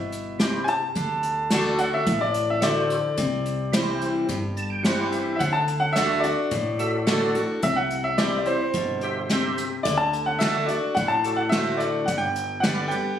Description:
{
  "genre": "honky-tonk and classic country",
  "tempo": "108 BPM",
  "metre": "4/4",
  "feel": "straight",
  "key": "D mixolydian",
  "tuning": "A4 = 444 Hz",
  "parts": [
    { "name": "bright upright piano", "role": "melody", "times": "0.0-13.2 s", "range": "C5 to A5", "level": "-24 LUFS", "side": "left 1 dB", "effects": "plate reverb" },
    { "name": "picked steel-string acoustic guitar", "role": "accompaniment", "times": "0.0-13.2 s", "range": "G2 to G4", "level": "-27 LUFS", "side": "left 2 dB", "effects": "none" },
    { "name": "upright bass", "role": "bass", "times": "0.0-13.0 s", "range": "G1 to D2", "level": "-32 LUFS", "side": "equal", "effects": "none" },
    { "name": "unplugged drum kit", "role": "drums", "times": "0.1-13.0 s", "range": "hi-hat, kick drum, snare drum", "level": "-27 LUFS", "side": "equal", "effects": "none" },
    { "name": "percussive tonewheel organ", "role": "accompaniment", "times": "0.4-13.0 s", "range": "E4 to A5", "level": "-29 LUFS", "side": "right 3 dB", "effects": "overdrive, chorus vibrato, slow rotary speaker" }
  ],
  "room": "moderate studio reverb, RT60 0.7 s",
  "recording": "recorded on a phone in the room, studio reverb",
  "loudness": "-21 LUFS",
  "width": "side -9 dB against mid",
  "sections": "0.0-5.4 A section; 5.4-13.2 B section",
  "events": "upright piano solo 0.0-5.4; tonewheel organ fill 4.3-5.4",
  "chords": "0.0 C; 1.0 D; 3.2 C; 5.4 D; 7.6 C; 9.9 D; 12.1 G",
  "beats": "0.40 | 0.96 1.52 2.07 2.63 | 3.19 3.74 4.30 4.85 | 5.41 5.96 6.52 7.08 | 7.63 8.19 8.75 9.30 | 9.86 10.41 10.97 11.53 | 12.08 12.64"
}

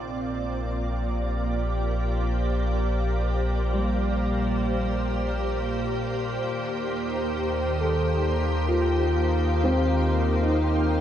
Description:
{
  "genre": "ambient",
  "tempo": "free time",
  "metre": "none",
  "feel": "none",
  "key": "unclear",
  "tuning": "A4 = 440 Hz",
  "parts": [
    { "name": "soft additive organ-like pad", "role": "sustained chords", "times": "0.0-11.0 s", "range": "Bb2 to F5", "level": "-27 LUFS", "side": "equal", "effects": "ensemble chorus, built-in reverb" },
    { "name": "felt-muted upright piano", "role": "arpeggios", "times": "0.0-11.0 s", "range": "G3 to A4", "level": "-30 LUFS", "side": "left 1 dB", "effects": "ping-pong delay" },
    { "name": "round analog bass", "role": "bass", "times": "0.0-11.0 s", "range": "Bb1 to Eb2", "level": "-26 LUFS", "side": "equal", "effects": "none" }
  ],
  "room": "moderate shimmer reverb, RT60 6.7 s",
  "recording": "worn, warbling old tape, cassette tape, warbly pitch drift",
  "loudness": "-23 LUFS",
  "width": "side -10 dB against mid",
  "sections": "0.0-11.0 A section",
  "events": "fade-in on ambient pad 0.0-11.0; fade-in on felt piano 0.0-11.0",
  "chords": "0.0 Bb6; 6.4 Eb69",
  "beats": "free time"
}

